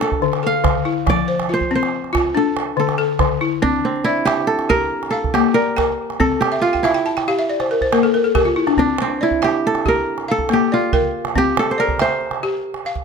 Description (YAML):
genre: west african traditional, West African string and xylophone music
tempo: 93 BPM (dotted quarters)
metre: 12/8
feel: straight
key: unclear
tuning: A4 = 440 Hz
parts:
  - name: kora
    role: melody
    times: 0.0-13.0 s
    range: C4 to F5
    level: -19 LUFS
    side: right 3 dB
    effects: none
  - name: balafon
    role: arpeggios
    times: 0.0-13.0 s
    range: D3 to A5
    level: -19 LUFS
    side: left 5 dB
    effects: none
  - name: calabash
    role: percussion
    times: 0.0-13.0 s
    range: none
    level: -23 LUFS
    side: right 6 dB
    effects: none
room: light reverb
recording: close, detailed microphones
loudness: -16 LUFS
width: side -5 dB against mid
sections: 0.0-3.6 A section; 3.6-13.0 B section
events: kora solo 0.0-3.6; balafon fill 6.5-8.8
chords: 0.0 Dm; 1.1 F5; 2.3 D5; 3.6 C; 4.9 Bb; 6.2 C; 7.5 N.C.; 8.8 C; 10.1 Bb; 11.4 C